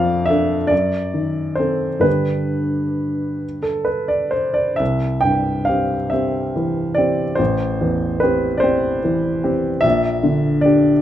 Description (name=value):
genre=classical, romantic nocturne for solo piano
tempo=43-51 BPM (dotted quarters)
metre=6/8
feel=rubato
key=unclear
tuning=A4 = 440 Hz
part: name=warm baby grand piano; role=solo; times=0.0-11.0 s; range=A1 to G5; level=-16 LUFS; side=equal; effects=none
room=light reverb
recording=none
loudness=-16 LUFS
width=side -11 dB against mid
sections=0.0-11.0 A section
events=none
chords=0.0 Dm/F; 0.7 F#dim7; 2.1 G; 4.8 C; 7.4 Am7; 9.8 Gm/Bb